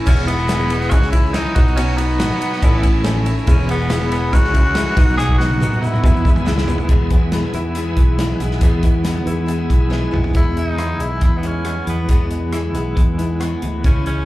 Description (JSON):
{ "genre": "folk rock and heartland rock", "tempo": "140 BPM", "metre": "4/4", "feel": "straight", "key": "E major", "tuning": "A4 = 442 Hz", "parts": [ { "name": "dark grand piano", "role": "accompaniment", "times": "0.0-6.9 s", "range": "D#4 to C#5", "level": "-33 LUFS", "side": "right 1 dB", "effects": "none" }, { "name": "picked old ladder-braced acoustic guitar", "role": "accompaniment", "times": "0.0-14.2 s", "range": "E2 to F#4", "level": "-23 LUFS", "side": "left 2 dB", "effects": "plate reverb, slapback echo" }, { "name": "bright tonewheel organ", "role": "sustained chords", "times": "0.0-10.3 s", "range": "B3 to A4", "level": "-32 LUFS", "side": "equal", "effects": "slow rotary speaker, chorus vibrato, plate reverb" }, { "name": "clean electric guitar", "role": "riff", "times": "0.0-14.2 s", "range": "E2 to F#4", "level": "-26 LUFS", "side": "right 3 dB", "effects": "tremolo, slapback echo" }, { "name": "raspy tenor saxophone", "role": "melody", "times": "0.1-6.4, 10.4-14.2 s", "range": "B3 to G#4", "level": "-23 LUFS", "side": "left 1 dB", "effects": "plate reverb, slapback echo, tape echo" }, { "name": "fingered electric bass", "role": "bass", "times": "0.1-14.2 s", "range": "E1 to E2", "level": "-20 LUFS", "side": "equal", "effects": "none" }, { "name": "natural country drum kit", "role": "drums", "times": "0.1-14.2 s", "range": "crash cymbal, hi-hat, kick drum, ride cymbal, rim click, snare drum, toms", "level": "-17 LUFS", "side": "equal", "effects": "none" }, { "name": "egg shaker", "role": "percussion", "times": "0.1-6.8 s", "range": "none", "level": "-42 LUFS", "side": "right 2 dB", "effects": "none" } ], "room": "little or no reverb", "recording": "live gig heard through the venue's PA, club reverb", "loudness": "-14 LUFS", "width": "side -17 dB against mid", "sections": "0.0-6.9 A section; 6.9-10.3 B section; 10.3-14.2 C section", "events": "drum fill 5.2-6.9, 9.9-10.3", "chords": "0.1 E; 0.9 C#m; 1.6 B; 2.6 A; 3.5 E; 4.3 C#m; 5.0 B; 6.0 E" }